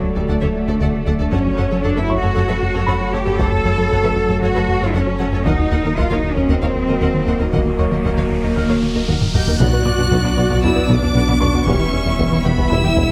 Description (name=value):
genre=cinematic, hybrid orchestral and electronic film score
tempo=116 BPM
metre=4/4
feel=straight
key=unclear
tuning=A4 = 438 Hz
part: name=chorused pulse-width pad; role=sustained chords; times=0.0-13.1 s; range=F#3 to E5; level=-28 LUFS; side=equal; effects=none
part: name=mellow French horn section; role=sustained chords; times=0.0-12.9 s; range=B3 to A#4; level=-30 LUFS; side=equal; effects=none
part: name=plucky analog bass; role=riff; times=0.0-13.1 s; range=D2 to B3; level=-24 LUFS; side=equal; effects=none
part: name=clear symphonic cello section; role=bass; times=0.0-13.0 s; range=E2 to A4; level=-24 LUFS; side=equal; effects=none
part: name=sub bass with octave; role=bass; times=0.0-13.1 s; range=D1 to B1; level=-28 LUFS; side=equal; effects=none
part: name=felt-muted upright piano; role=texture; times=0.0-13.1 s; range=C#5 to E#6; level=-34 LUFS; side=equal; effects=delay
part: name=clear chamber violin section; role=melody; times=0.2-13.1 s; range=C#5 to G6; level=-31 LUFS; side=equal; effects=none
part: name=rich symphonic violin section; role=second line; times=0.2-13.1 s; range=B3 to E5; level=-32 LUFS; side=equal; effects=none
part: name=rich symphonic viola section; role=accompaniment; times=0.2-13.1 s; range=B3 to A#4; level=-29 LUFS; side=equal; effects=none
part: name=glassy wavetable pluck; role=arpeggios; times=0.2-13.0 s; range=D3 to B4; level=-33 LUFS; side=equal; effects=none
part: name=rich symphonic double bass section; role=bass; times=0.2-13.0 s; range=E1 to F#2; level=-27 LUFS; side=equal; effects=none
part: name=taiko ensemble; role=drums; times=1.3-13.1 s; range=none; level=-25 LUFS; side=equal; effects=none
part: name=riser and sub drop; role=sound effects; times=7.3-11.7 s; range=none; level=-31 LUFS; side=equal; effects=none
part: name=warm tuba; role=bass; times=9.6-13.0 s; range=E1 to B1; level=-27 LUFS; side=equal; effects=none
room=moderate scoring stage reverb, RT60 1.6 s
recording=none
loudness=-17 LUFS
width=mono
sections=0.0-9.6 A section; 9.6-13.1 B section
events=riser 7.3-9.6; drum fill 9.1-9.6; impact 9.6-11.7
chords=0.0 D; 1.3 F#m; 5.5 D#m; 9.6 Bm; 11.7 Em